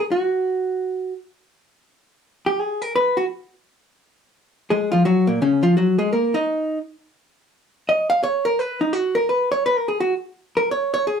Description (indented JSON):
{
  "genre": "jazz",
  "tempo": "170 BPM",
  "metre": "4/4",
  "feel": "swing 64% on 8ths",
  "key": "Eb minor",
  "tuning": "A4 = 441 Hz",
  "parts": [
    { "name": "vintage hollow-body jazz guitar", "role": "solo", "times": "0.0-11.2 s", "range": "Bb2 to F5", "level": "-18 LUFS", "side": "equal", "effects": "none" }
  ],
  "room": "wet small room reverb, RT60 0.5 s",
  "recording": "none",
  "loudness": "-19 LUFS",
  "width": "side -7 dB against mid",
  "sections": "0.0-1.5 A section; 1.5-11.2 B section",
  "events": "hollow-body jazz guitar solo 1.5-11.2",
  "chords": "0.0 N.C.; 4.3 Ebm7; 7.2 N.C."
}